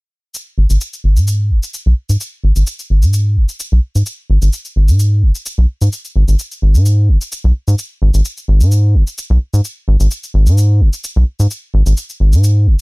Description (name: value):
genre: minimal techno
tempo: 129 BPM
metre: 4/4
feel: straight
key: G# minor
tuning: A4 = 438 Hz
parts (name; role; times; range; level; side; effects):
- cabasa; drums; 0.3-12.5 s; none; -26 LUFS; left 1 dB; none
- rubbery square bass; bass; 0.6-12.8 s; F#1 to G#2; -10 LUFS; equal; none
room: little or no reverb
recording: dark, warm production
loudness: -12 LUFS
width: side -30 dB against mid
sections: 0.3-12.8 A section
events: none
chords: none